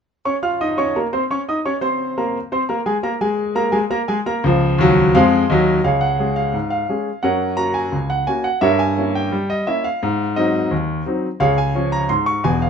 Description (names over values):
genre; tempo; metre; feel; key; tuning
ragtime piano; 86 BPM; 2/4; straight; Db major; A4 = 441 Hz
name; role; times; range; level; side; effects
warm grand piano; solo; 0.3-12.7 s; Fb1 to F6; -16 LUFS; equal; none
room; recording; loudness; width
moderate studio reverb, RT60 0.8 s; minimal, uncompressed stereo recording; -16 LUFS; side -6 dB against mid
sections
0.3-5.8 A section; 5.8-12.7 B section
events
none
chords
0.3 Db; 3.0 Ab7(no3); 5.8 Db5; 7.2 Gb; 8.6 Gdim7; 10.0 Ab7; 11.4 Db